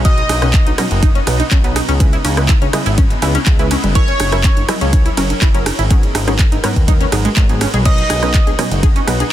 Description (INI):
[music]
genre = progressive house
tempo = 123 BPM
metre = 4/4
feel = straight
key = unclear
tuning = A4 = 440 Hz
[part]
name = plucky unison lead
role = melody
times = 0.0-0.7, 4.0-4.6, 7.9-8.5 s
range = C#5 to D#5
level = -24 LUFS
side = equal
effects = dub echo
[part]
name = soft synth bell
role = second line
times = 0.0-0.7, 4.0-4.6, 7.9-8.5 s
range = C#6 to D#6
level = -30 LUFS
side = right 3 dB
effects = none
[part]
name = shimmering ambient pad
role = sustained chords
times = 0.0-9.3 s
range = C#3 to B4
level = -25 LUFS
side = left 2 dB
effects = chorus, built-in reverb, sidechain pumping
[part]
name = fat analog bass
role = bass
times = 0.0-9.2 s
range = F#1 to D#2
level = -19 LUFS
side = equal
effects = sidechain pumping
[part]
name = tight sequenced synth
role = arpeggios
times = 0.1-9.2 s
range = G#3 to G#4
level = -23 LUFS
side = equal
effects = chorus, sidechain pumping, dub echo
[part]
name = wide unison pluck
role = stabs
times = 0.1-9.2 s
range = G#2 to D#5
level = -23 LUFS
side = right 2 dB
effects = sidechain pumping, dub echo
[part]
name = electronic kick drum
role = drums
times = 0.1-8.9 s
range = none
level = -12 LUFS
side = equal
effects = none
[part]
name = house drum kit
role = drums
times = 0.1-9.3 s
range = crash cymbal, handclaps, hi-hat, ride cymbal, rim click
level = -21 LUFS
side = right 1 dB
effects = none
[part]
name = electronic rim click and congas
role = percussion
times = 0.3-9.3 s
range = none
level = -24 LUFS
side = right 2 dB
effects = sidechain pumping on perc, soft clipping on snare, sidechain pumping on snare
[sound]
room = little or no reverb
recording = dense, heavily limited modern master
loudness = -11 LUFS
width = side -12 dB against mid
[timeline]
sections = 0.0-9.3 A section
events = none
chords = 0.1 B; 2.0 C#m7; 4.0 F#7; 5.9 G#m7; 7.9 B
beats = | 0.05 0.54 1.03 1.51 | 2.00 2.49 2.98 3.47 | 3.95 4.44 4.93 5.42 | 5.91 6.39 6.88 7.37 | 7.86 8.34 8.83 9.32